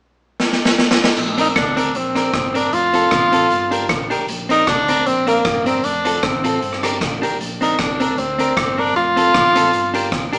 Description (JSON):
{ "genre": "ska", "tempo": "154 BPM", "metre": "4/4", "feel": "swing 54% on 8ths", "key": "Bb major", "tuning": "A4 = 440 Hz", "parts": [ { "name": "street-band drum kit", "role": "drums", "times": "0.4-10.4 s", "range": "crash cymbal, hi-hat, kick drum, rim click, snare drum", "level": "-22 LUFS", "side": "equal", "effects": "none" }, { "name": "hollow-body short-scale fingered electric bass", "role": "bass", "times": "1.2-10.4 s", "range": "F1 to D2", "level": "-33 LUFS", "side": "equal", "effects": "none" }, { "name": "clear tenor saxophone", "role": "melody", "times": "1.4-10.3 s", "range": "Bb3 to F4", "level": "-19 LUFS", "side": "equal", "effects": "none" }, { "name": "clean electric guitar", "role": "accompaniment", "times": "1.4-10.4 s", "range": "C4 to Bb4", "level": "-24 LUFS", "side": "equal", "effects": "spring reverb" } ], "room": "moderate studio reverb, RT60 0.8 s", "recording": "band playing live in one room, small speaker sound", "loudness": "-17 LUFS", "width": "mono", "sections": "0.0-1.2 A section; 1.2-10.4 B section", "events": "drum fill 0.4-1.2", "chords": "0.0 N.C.; 1.2 Bbadd9; 2.7 F; 3.5 Gm; 4.3 Bbadd9; 5.8 F; 6.6 Gm; 7.4 Bbadd9; 9.0 F; 9.7 Gm" }